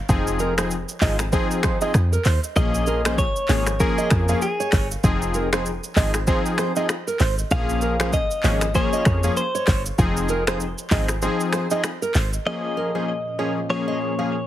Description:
afrobeats; 97 BPM; 4/4; swing 58% on 16ths; A4 = 438 Hz
warm analog keys; accompaniment; 0.1-14.4 s; F3 to Ab4; -25 LUFS; left 2 dB; chorus
deep log drum bass; bass; 0.1-12.4 s; F1 to F2; -23 LUFS; equal
afro-pop drum kit; drums; 0.1-12.5 s; finger snaps, handclaps, hi-hat, kick drum, rim click, shaker; -24 LUFS; equal
nylon-string guitar; riff; 0.4-14.3 s; Bb4 to F5; -28 LUFS; right 5 dB; digital delay
direct-recorded clean electric guitar; melody; 2.6-14.5 s; Ab4 to F5; -26 LUFS; left 1 dB; digital delay
deep dark ambient pad; sustained chords; 13.1-14.5 s; Bb2 to Ab4; -30 LUFS; left 2 dB; chorus, built-in reverb, sidechain pumping
little or no reverb; heavily compressed radio sound, multiband compression; -19 LUFS; side -12 dB against mid
0.0-12.5 A section; 12.5-14.5 B section
kick muted 11.2-12.5
0.1 Fm7; 2.6 Bbm7; 5.0 Fm7; 7.5 Bbm7; 10.0 Fm7; 12.5 Bbm7
| 0.09 0.71 1.33 1.95 | 2.56 3.18 3.80 4.42 | 5.04 5.66 6.28 6.89 | 7.51 8.13 8.75 9.37 | 9.99 10.60 11.22 11.84 | 12.46 13.08 13.70 14.32

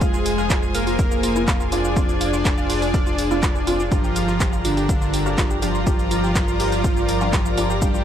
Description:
melodic techno; 123 BPM; 4/4; straight; F dorian; A4 = 440 Hz
soft supersaw; melody; 0.0-8.0 s; D3 to D5; -24 LUFS; equal; sidechain pumping, tape echo
rich chamber string section; sustained chords; 0.0-8.0 s; F4 to Bb5; -30 LUFS; left 3 dB; sidechain pumping
woody wave-folded pluck; arpeggios; 0.0-8.0 s; F4 to F6; -31 LUFS; right 1 dB; chorus, sidechain pumping, tape echo
filtered dub chord stab; stabs; 0.0-8.0 s; F3 to G4; -28 LUFS; equal; phaser, ensemble chorus, sidechain pumping, tape echo
round analog bass; bass; 0.0-8.0 s; F1 to G1; -26 LUFS; equal; tube saturation, sidechain pumping
breakbeat sampler-style drum kit; drums; 0.0-7.9 s; hi-hat, snare drum; -36 LUFS; equal
electronic kick drum; drums; 0.0-7.9 s; -22 LUFS; equal
techno drum kit; drums; 0.0-8.0 s; handclaps, hi-hat, shaker; -28 LUFS; right 1 dB
ethereal airy pad; texture; 0.0-8.0 s; F4 to D5; -29 LUFS; right 1 dB; ensemble chorus, built-in reverb, sidechain pumping
little or no reverb; dry, gritty hardware recording, transformer saturation; -18 LUFS; side -9 dB against mid
0.0-8.0 A section
0.0 Fm; 3.9 Gm
| 0.01 0.50 0.99 1.48 | 1.97 2.45 2.94 3.43 | 3.92 4.40 4.89 5.38 | 5.87 6.36 6.84 7.33 | 7.82

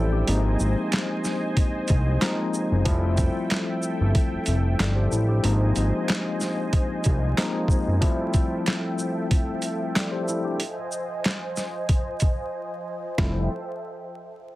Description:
hip hop, boom-bap hip-hop; 93 BPM; 4/4; swing 55% on 16ths; A4 = 440 Hz
tine electric piano; accompaniment; 0.0-13.5 s; F3 to D5; -27 LUFS; left 2 dB; medium stereo tremolo, high-pass filter, low-pass filter
lush unison pad; sustained chords; 0.0-13.5 s; F3 to Ab5; -32 LUFS; right 1 dB; chorus, high-pass filter, low-pass filter
fat analog bass; bass; 0.0-8.0, 13.2-13.5 s; F1 to C2; -22 LUFS; equal
boom bap sampler-style drum kit; drums; 0.3-13.3 s; handclaps, hi-hat, kick drum, shaker, snare drum; -24 LUFS; equal
finger snaps; percussion; 0.9-13.5 s; -33 LUFS; right 5 dB
little or no reverb; dense, heavily limited modern master, vinyl crackle; -22 LUFS; side -17 dB against mid
0.0-2.9 A section; 2.9-13.2 B section; 13.2-14.6 C section
filter sweep 2.9-13.2; break 8.0-13.2
0.3 Ab6; 2.9 Fmaj9; 5.4 Ab6; 8.0 Fmaj9; 10.6 Ab6; 13.2 Fmaj9
| 0.28 0.92 1.57 2.21 | 2.86 3.50 4.15 4.79 | 5.44 6.08 6.73 7.38 | 8.02 8.66 9.31 9.96 | 10.60 11.25 11.89 12.54 | 13.18

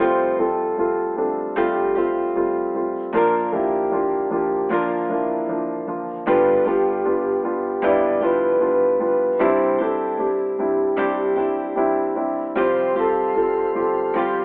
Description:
pop; 76 BPM; 4/4; straight; F major; A4 = 440 Hz
breathy flugelhorn; melody; 0.0-14.4 s; E4 to D5; -24 LUFS; equal
warm grand piano; accompaniment; 0.0-14.4 s; G2 to A4; -24 LUFS; equal
direct-recorded clean electric guitar; arpeggios; 0.0-14.4 s; G2 to Bb4; -34 LUFS; equal
mellow tonewheel organ; sustained chords; 12.6-14.4 s; G4 to C6; -31 LUFS; equal; slow rotary speaker
saturated sub bass; bass; 12.6-14.4 s; F1 to G1; -51 LUFS; equal
wet studio reverb, RT60 0.6 s; rough home demo mix, telephone sound; -21 LUFS; mono
0.0-14.4 A section
0.0 Fadd9; 3.1 Bb; 6.3 G7; 9.4 Cadd9; 12.6 Fsus2
0.78 1.56 2.35 | 3.14 3.92 4.71 5.49 | 6.26 7.04 7.83 8.61 | 9.39 10.18 10.97 11.77 | 12.57 13.36 14.15

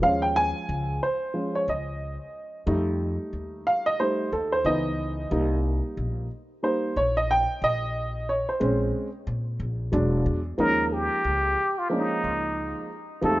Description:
hip hop; 91 BPM; 4/4; swing 60% on 16ths; A4 = 440 Hz
dark upright piano; accompaniment; 0.0-13.4 s; Fb3 to Ab5; -25 LUFS; right 1 dB
upright bass; bass; 0.0-13.4 s; E1 to Bb2; -29 LUFS; equal
trumpet with plunger mute; melody; 10.6-13.4 s; Eb4 to Bb4; -25 LUFS; equal; analog delay
light reverb; rough home demo mix, nothing above 7.6 kHz; -23 LUFS; side -17 dB against mid
0.0-10.6 A section; 10.6-13.4 B section
upright piano solo 0.0-10.6
0.0 Eb7sus4; 2.7 F9; 4.6 Dbm7; 5.3 Cm7; 7.6 Bbm9; 9.9 E9; 10.6 Eb7sus4
| 0.03 0.69 1.35 2.01 | 2.67 3.33 3.99 4.65 | 5.31 5.97 6.62 7.29 | 7.94 8.60 9.26 9.92 | 10.58 11.24 11.90 12.56 | 13.22

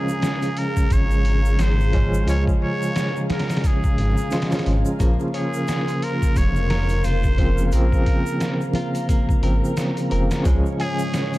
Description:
trip hop; 88 BPM; 4/4; swing 58% on 16ths; Bb minor; A4 = 438 Hz
trumpet with straight mute; melody; 0.0-11.4 s; Ab4 to Db5; -30 LUFS; equal; tape echo
bell-like tine electric piano; accompaniment; 0.0-11.4 s; Db3 to F4; -24 LUFS; equal; tremolo, tape echo
string machine, cellos; sustained chords; 0.0-11.4 s; Ab3 to Db6; -31 LUFS; equal; ensemble chorus, vintage 12-bit sampler grit
egg shaker and congas; percussion; 0.1-11.4 s; -32 LUFS; right 1 dB
trip hop sampler-style drum kit; drums; 0.2-11.4 s; hi-hat, kick drum, snare drum; -22 LUFS; equal
dark detuned saw bass; bass; 0.9-10.6 s; F1 to Db2; -20 LUFS; equal
clean electric guitar; arpeggios; 5.0-11.0 s; Ab3 to Ab5; -33 LUFS; left 3 dB; tape echo
digital ambience; dark, warm production, vinyl crackle; -18 LUFS; side -17 dB against mid
0.0-11.4 A section
0.0 Db; 5.0 Bbmadd9; 10.5 Db
0.23 0.91 1.59 | 2.27 2.95 3.63 4.32 | 5.00 5.68 6.36 7.04 | 7.73 8.41 9.09 9.77 | 10.45 11.13

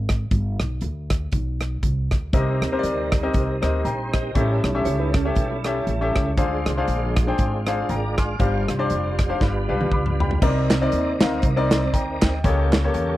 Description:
uptempo gospel; 119 BPM; 4/4; swing 56% on 8ths; C minor; A4 = 445 Hz
upright bass; bass; 0.0-13.2 s; F1 to E2; -24 LUFS; equal
modern studio drum kit; drums; 0.1-13.1 s; crash cymbal, hi-hat, kick drum, rim click, snare drum, toms; -22 LUFS; equal
bright grand piano; accompaniment; 2.3-13.2 s; G2 to D6; -24 LUFS; left 3 dB
tonewheel organ; sustained chords; 2.3-13.2 s; G3 to F5; -29 LUFS; right 2 dB; slow rotary speaker, chorus vibrato
mellow electric guitar; second line; 4.9-6.2 s; G3 to C#5; -30 LUFS; right 8 dB
group handclap; percussion; 10.7-12.8 s; -36 LUFS; right 3 dB
studio reverb; dry, close 1970s-style studio recording; -19 LUFS; side -15 dB against mid
0.0-10.4 A section; 10.4-13.2 B section
drum fill 9.4-10.4
0.3 G; 2.3 Cm7; 4.4 A7; 6.4 Dm7b5; 8.4 G7sus4; 9.4 G7; 10.4 Cm9; 12.4 A7b9/C#
| 0.31 0.82 1.32 1.83 | 2.33 2.84 3.34 3.85 | 4.35 4.86 5.36 5.87 | 6.38 6.88 7.39 7.89 | 8.40 8.90 9.41 9.91 | 10.42 10.93 11.43 11.94 | 12.44 12.95

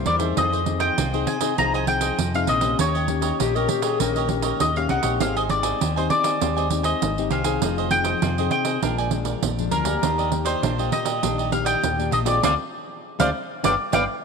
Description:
samba and choro; 100 BPM; 4/4; straight; A4 = 442 Hz
mandolin; melody; 0.0-14.0 s; Bb4 to Bb5; -24 LUFS; left 2 dB
cavaquinho; accompaniment; 0.0-14.0 s; D4 to Ab5; -29 LUFS; right 10 dB
nylon-string guitar; accompaniment; 0.0-14.0 s; F2 to Ab4; -28 LUFS; left 12 dB
fingered electric bass; bass; 0.0-14.0 s; F1 to F2; -27 LUFS; equal
pandeiro; percussion; 0.1-14.1 s; -27 LUFS; right 11 dB
breathy clarinet; second line; 3.4-4.5 s; G4 to Bb4; -29 LUFS; left 10 dB; tape echo
moderate plate reverb, RT60 2.7 s; 1960s-style stereo with parts hard left and right; -20 LUFS; side -5 dB against mid
0.0-14.2 A section
band accent 12.4-14.2
0.4 Fm7; 2.8 Eb7; 5.2 Abmaj7; 7.6 Fm7; 8.8 Bb7; 10.0 Ebmaj7; 12.4 D7(b5, no3); 13.6 G7
| 0.38 0.98 1.59 2.19 | 2.79 3.40 4.00 4.61 | 5.21 5.81 6.41 7.02 | 7.62 8.22 8.82 9.43 | 10.03 10.63 11.23 11.84 | 12.44 13.04 13.64

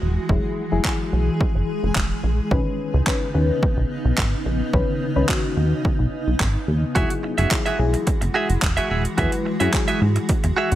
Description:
dance-pop; 108 BPM; 4/4; straight; E major; A4 = 441 Hz
granular cloud pad; sustained chords; 0.0-10.8 s; C#3 to G#4; -27 LUFS; equal; built-in reverb, sidechain pumping
plucky analog bass; bass; 0.0-10.8 s; D#1 to G#2; -20 LUFS; equal; sidechain pumping
deep mellow chord stab; accompaniment; 0.3-10.6 s; D#3 to B4; -26 LUFS; left 4 dB; chorus, sidechain pumping
house drum kit; drums; 0.3-10.8 s; handclaps, hi-hat, kick drum; -22 LUFS; equal; overdrive
direct-recorded clean electric guitar; riff; 7.0-10.8 s; F#4 to E5; -23 LUFS; right 4 dB; lush chorus
digital ambience; -19 LUFS; side -13 dB against mid
0.0-10.8 A section
0.0 Eadd9; 2.5 Badd9; 7.0 Eadd9
| 0.29 0.85 1.40 1.96 | 2.51 3.07 3.62 4.18 | 4.74 5.29 5.85 6.40 | 6.96 7.51 8.07 8.62 | 9.18 9.74 10.29

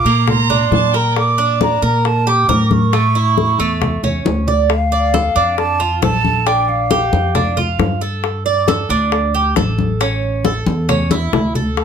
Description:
latin, Cuban son and guajira; 136 BPM; 4/4; straight; D minor; A4 = 439 Hz
breathy mellow jazz flute; melody; 0.0-7.6, 11.8 s; F5 to D6; -18 LUFS; right 1 dB; plate reverb
Cuban tres; arpeggios; 0.0-11.8 s; A3 to D5; -19 LUFS; right 6 dB
upright bass; bass; 0.0-11.8 s; A1 to Bb2; -18 LUFS; equal
rich chamber violin section; second line; 0.1-2.0 s; D5 to Bb5; -22 LUFS; right 5 dB
bongos; percussion; 0.1-11.8 s; -21 LUFS; left 9 dB
congas; percussion; 0.3-11.8 s; -20 LUFS; left 3 dB
moderate studio reverb, RT60 0.5 s; -13 LUFS; side -7 dB against mid
0.0-4.7 A section; 4.7-11.8 B section
drum fill 4.3-4.7, 11.1-11.8
0.0 Bb; 1.2 Gmadd9/Bb; 2.9 A; 4.7 Dm; 6.5 Bb6; 8.2 Gsus2; 10.0 A
0.28 0.72 | 1.16 1.60 2.05 2.49 | 2.93 3.37 3.81 4.26 | 4.70 5.14 5.58 6.03 | 6.47 6.91 7.35 7.79 | 8.24 8.68 9.12 9.56 | 10.01 10.45 10.89 11.33 | 11.77

